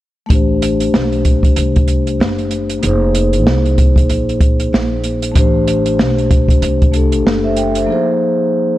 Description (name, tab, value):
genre	hip hop, jazz-hop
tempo	95 BPM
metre	4/4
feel	swing 60% on 16ths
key	unclear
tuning	A4 = 441 Hz
part	vibraphone with soft mallets	accompaniment	0.3-8.8 s	F3 to G5	-16 LUFS	left 1 dB	low-pass filter
part	upright bass	bass	0.3-7.9 s	F1 to C2	-18 LUFS	equal	transformer saturation
part	open jazz drum kit	drums	0.3-7.9 s	hi-hat, kick drum, snare drum	-14 LUFS	equal	none
room	little or no reverb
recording	dry, gritty hardware recording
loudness	-11 LUFS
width	side -15 dB against mid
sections	0.3-8.8 A section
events	filter sweep on vibraphone 0.3-8.8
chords	0.3 Am9; 2.8 Fm7; 5.4 Am9; 7.9 Fm7